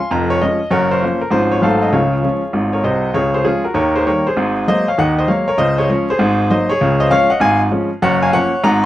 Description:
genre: jazz, stride piano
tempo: 197 BPM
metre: 4/4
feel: swing 64% on 8ths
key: Db major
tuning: A4 = 437 Hz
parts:
  - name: clear baby grand piano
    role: solo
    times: 0.0-8.9 s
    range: F1 to C6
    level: -13 LUFS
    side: equal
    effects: none
room: moderate club reverb, RT60 0.5 s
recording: dark, warm production, vinyl crackle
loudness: -13 LUFS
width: side -14 dB against mid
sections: 0.0-3.1 A section; 3.1-8.9 A section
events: none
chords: 0.1 Db/F; 0.7 Gbmaj7; 1.3 Db/Ab; 1.6 Ab7b9; 1.9 Db; 3.8 Eb; 4.4 Ab9; 5.6 Db; 6.2 Ab9; 6.8 Db; 8.0 Gbmaj7

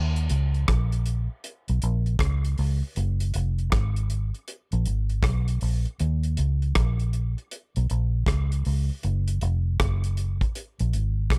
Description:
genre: roots reggae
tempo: 79 BPM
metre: 4/4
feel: swing 64% on 16ths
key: Eb minor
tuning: A4 = 440 Hz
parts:
  - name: vintage muted fingered electric bass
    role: bass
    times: 0.0-11.4 s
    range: F1 to Eb2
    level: -26 LUFS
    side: equal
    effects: none
  - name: damped 70s drum kit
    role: drums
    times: 0.2-11.4 s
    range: hi-hat, kick drum, rim click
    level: -30 LUFS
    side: equal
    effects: none
room: little or no reverb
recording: none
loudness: -26 LUFS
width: mono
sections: 0.0-11.4 A section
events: none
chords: none

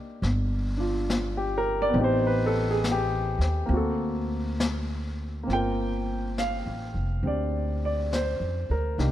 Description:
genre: jazz ballad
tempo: 69 BPM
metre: 4/4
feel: swing 66% on 8ths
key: G minor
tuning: A4 = 440 Hz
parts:
  - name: warm baby grand piano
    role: accompaniment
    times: 0.0-9.1 s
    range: Bb3 to G5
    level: -28 LUFS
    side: equal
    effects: none
  - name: upright bass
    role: bass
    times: 0.2-9.1 s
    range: F1 to F2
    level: -28 LUFS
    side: equal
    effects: none
  - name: jazz brush drum kit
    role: drums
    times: 0.2-9.1 s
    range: brushed snare drum, hi-hat, snare drum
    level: -33 LUFS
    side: left 2 dB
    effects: none
room: light reverb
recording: none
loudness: -24 LUFS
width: side -12 dB against mid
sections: 0.0-5.5 A section; 5.5-9.1 B section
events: none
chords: 0.0 Cm9 (rootless); 2.0 Am7b5; 3.7 D7b13; 5.5 Gm11

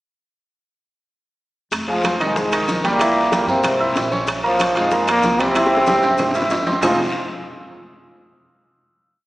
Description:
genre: latin, salsa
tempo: 188 BPM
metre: 4/4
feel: straight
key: F harmonic minor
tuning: A4 = 444 Hz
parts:
  - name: upright bass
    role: bass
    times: 1.7-7.0 s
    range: F1 to G2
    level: -33 LUFS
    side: equal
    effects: none
  - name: bongos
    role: percussion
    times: 1.7-6.9 s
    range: none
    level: -28 LUFS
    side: left 1 dB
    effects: none
  - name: claves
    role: percussion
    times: 1.7-6.9 s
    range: none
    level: -34 LUFS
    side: right 2 dB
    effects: none
  - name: congas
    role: percussion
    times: 1.7-6.9 s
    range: none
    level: -30 LUFS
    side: equal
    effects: none
  - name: guiro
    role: percussion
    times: 1.7-6.9 s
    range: none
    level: -32 LUFS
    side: left 2 dB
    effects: none
  - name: maracas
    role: percussion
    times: 1.7-6.9 s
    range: none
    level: -36 LUFS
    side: left 3 dB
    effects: none
  - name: timbales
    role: percussion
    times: 1.7-6.9 s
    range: none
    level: -26 LUFS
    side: right 1 dB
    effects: none
  - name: bright trombone section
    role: melody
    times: 1.9-7.0 s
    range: Ab2 to F4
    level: -19 LUFS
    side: equal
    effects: none
  - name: bright grand piano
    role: accompaniment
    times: 1.9-7.0 s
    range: Eb3 to E6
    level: -21 LUFS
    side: right 1 dB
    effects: none
room: wet concert hall reverb, RT60 2.0 s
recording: recorded in a church or concert hall, small speaker sound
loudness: -16 LUFS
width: side -17 dB against mid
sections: 1.7-6.8 A section; 6.8-8.1 final chord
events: drum fill 5.6-6.8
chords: 1.7 Fm7; 3.0 C7; 4.3 Bbm; 5.6 C; 6.8 Fm7

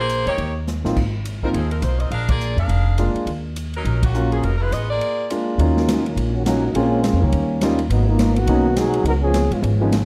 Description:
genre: jazz, big band swing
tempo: 208 BPM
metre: 4/4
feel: swing 60% on 8ths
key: Eb minor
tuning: A4 = 439 Hz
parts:
  - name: edgy saxophone section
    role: melody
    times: 0.0-5.3 s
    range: Eb3 to F5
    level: -27 LUFS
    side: equal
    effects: none
  - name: upright bass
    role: bass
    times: 0.0-10.1 s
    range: F1 to Ab2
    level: -23 LUFS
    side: equal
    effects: none
  - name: swinging big-band drum kit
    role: drums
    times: 0.1-10.0 s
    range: crash cymbal, hi-hat, kick drum, ride cymbal, rim click, snare drum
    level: -28 LUFS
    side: equal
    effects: none
  - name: warm concert grand piano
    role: accompaniment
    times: 0.8-9.9 s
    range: F3 to Gb4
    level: -24 LUFS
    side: equal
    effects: none
  - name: mellow trombone section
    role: second line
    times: 5.8-10.1 s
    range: Db3 to Bb4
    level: -24 LUFS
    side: equal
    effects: none
room: moderate large studio reverb, RT60 0.9 s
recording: dark, warm production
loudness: -20 LUFS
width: mono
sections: 0.0-5.6 A section; 5.6-10.1 B section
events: drum fill 0.7; band accent 2.3, 4.0; trombone section solo 5.6-10.1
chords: 0.4 Eb; 1.0 Ab69; 2.1 Bb7; 3.3 Ebm7; 4.4 Fm7b5; 5.0 Bb7; 5.6 Ebm7; 6.7 Bbm7; 7.3 Eb7; 7.9 Abm11; 9.1 Db7

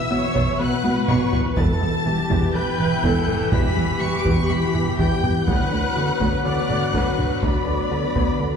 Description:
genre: cinematic, hybrid orchestral and electronic film score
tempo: 123 BPM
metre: 4/4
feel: straight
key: unclear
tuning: A4 = 440 Hz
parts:
  - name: dark symphonic violin section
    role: melody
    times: 0.0-8.6 s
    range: B5 to D7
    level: -29 LUFS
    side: left 3 dB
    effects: none
  - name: rich symphonic violin section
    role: second line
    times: 0.0-8.6 s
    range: B4 to D6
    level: -30 LUFS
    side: left 1 dB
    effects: none
  - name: warm symphonic viola section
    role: accompaniment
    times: 0.0-8.6 s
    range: G4 to E5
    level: -27 LUFS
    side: left 1 dB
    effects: none
  - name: deep dark ambient pad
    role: sustained chords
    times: 0.0-8.6 s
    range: E3 to B4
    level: -31 LUFS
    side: left 1 dB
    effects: none
  - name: warm French horn section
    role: sustained chords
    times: 0.0-8.6 s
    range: E3 to B4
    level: -30 LUFS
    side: left 2 dB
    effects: none
  - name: thumb-piano-like synth pluck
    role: arpeggios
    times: 0.1-8.6 s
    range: E3 to F#4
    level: -32 LUFS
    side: left 4 dB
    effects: none
  - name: rubbery square bass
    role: riff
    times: 0.1-8.5 s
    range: D2 to B3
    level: -26 LUFS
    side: right 1 dB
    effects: none
  - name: rich symphonic cello section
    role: bass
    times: 0.1-8.5 s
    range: D2 to B2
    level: -27 LUFS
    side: right 1 dB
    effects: none
  - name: rich symphonic double bass section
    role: bass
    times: 0.1-8.5 s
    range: E1 to D2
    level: -27 LUFS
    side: right 2 dB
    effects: none
  - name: solo taiko drums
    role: drums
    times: 0.4-8.6 s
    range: none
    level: -26 LUFS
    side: equal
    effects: none
room: wet scoring stage reverb, RT60 1.6 s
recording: heard from further back in the room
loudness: -18 LUFS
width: side -7 dB against mid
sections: 0.0-8.6 A section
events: drum fill 0.8-1.6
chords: 0.0 Bsus4; 1.6 Em; 5.5 Bm/D

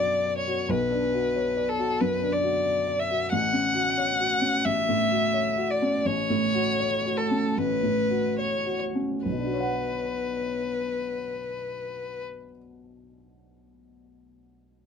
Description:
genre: neoclassical piano and strings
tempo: 68-93 BPM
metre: 4/4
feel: rubato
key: B minor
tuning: A4 = 439 Hz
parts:
  - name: warm violin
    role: melody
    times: 0.0-12.2 s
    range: A4 to F#5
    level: -26 LUFS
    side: left 2 dB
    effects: none
  - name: warm upright piano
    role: accompaniment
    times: 0.0-14.9 s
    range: A1 to F#5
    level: -27 LUFS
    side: equal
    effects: none
room: light reverb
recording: close, detailed microphones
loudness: -24 LUFS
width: side -6 dB against mid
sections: 0.0-9.2 A section; 9.2-12.6 B section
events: slowing down 2.0-9.2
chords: 0.0 Bmadd9; 3.3 F#m/A; 9.2 Bmadd9

